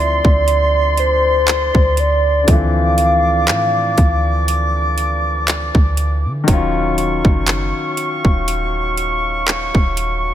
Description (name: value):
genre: contemporary R&B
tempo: 60 BPM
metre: 4/4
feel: swing 54% on 16ths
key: unclear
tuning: A4 = 436 Hz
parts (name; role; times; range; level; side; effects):
- hollow clarinet-like synth lead; melody; 0.0-5.5 s; C5 to F5; -18 LUFS; equal; chorus, ping-pong delay
- warm concert grand piano; accompaniment; 0.0-10.3 s; D3 to C5; -23 LUFS; left 4 dB; none
- warm woodwind section; sustained chords; 0.0-10.3 s; Gb3 to D6; -21 LUFS; equal; none
- soft 808-style bass; bass; 0.0-10.3 s; Eb1 to D3; -19 LUFS; equal; none
- trap drum kit; drums; 0.2-10.2 s; handclaps, hi-hat, kick drum; -16 LUFS; equal; none
room: light reverb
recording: none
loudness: -13 LUFS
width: side -11 dB against mid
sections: 0.0-10.3 A section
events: none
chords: 0.0 Dm9; 6.5 Ebm9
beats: 0.48 1.48 | 2.48 3.48 4.48 5.48 | 6.48 7.48 8.48 9.48